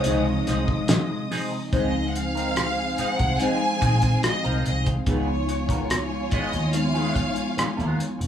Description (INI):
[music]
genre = lush 1970s-style soul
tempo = 72 BPM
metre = 4/4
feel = straight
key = Db major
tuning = A4 = 440 Hz
[part]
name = rich studio violin section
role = melody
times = 0.0-8.0 s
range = Db5 to Ab5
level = -29 LUFS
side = equal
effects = none
[part]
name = warm studio string section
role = second line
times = 0.0-8.3 s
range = C4 to Eb6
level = -32 LUFS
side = equal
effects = none
[part]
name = mellow tine electric piano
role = accompaniment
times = 0.0-8.3 s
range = C3 to Eb4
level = -28 LUFS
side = left 1 dB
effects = medium stereo tremolo
[part]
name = electric guitar through a small old amp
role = riff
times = 0.0-8.2 s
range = F3 to Bb4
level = -31 LUFS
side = equal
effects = wah
[part]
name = clear horn section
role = stabs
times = 0.0-1.3 s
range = C3 to Ab3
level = -36 LUFS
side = left 1 dB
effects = none
[part]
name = cloth-damped thuddy drum kit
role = drums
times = 0.0-8.3 s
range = hi-hat, kick drum, rim click, snare drum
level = -26 LUFS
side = equal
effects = none
[part]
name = vintage muted fingered electric bass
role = bass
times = 0.1-8.3 s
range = F1 to Eb2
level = -26 LUFS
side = equal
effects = none
[sound]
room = wet small room reverb, RT60 0.5 s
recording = band playing live in one room, small room ambience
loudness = -21 LUFS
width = side -9 dB against mid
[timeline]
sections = 0.0-1.7 A section; 1.7-8.3 B section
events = none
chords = 0.0 Dbmaj9; 5.1 Db7